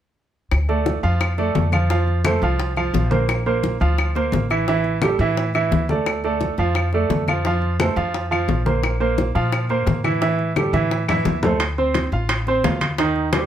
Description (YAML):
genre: latin, salsa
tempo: 173 BPM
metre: 4/4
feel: straight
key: D minor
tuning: A4 = 439 Hz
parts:
  - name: upright bass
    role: bass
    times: 0.5-13.4 s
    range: A1 to Bb2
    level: -22 LUFS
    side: equal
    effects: none
  - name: bongos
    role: percussion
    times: 0.5-13.5 s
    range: none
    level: -26 LUFS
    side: left 5 dB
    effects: none
  - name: claves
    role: percussion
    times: 0.5-11.3 s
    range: none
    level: -27 LUFS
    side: left 6 dB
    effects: none
  - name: congas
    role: percussion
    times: 0.5-13.5 s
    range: none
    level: -26 LUFS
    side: left 2 dB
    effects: none
  - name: bright upright piano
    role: accompaniment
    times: 0.7-13.5 s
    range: Eb3 to F5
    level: -21 LUFS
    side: right 3 dB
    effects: none
  - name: timbales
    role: percussion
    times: 11.6-13.5 s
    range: none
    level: -24 LUFS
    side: right 3 dB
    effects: none
room: moderate studio reverb, RT60 0.6 s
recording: none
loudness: -18 LUFS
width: side -10 dB against mid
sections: 0.5-11.6 A section; 11.6-13.5 B section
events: drum fill 10.6-11.6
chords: 0.5 Dm; 1.9 F; 3.3 Bbadd9; 4.7 A5; 6.1 Dm; 7.4 F; 8.8 Bbsus2; 10.2 A5; 11.6 Dm7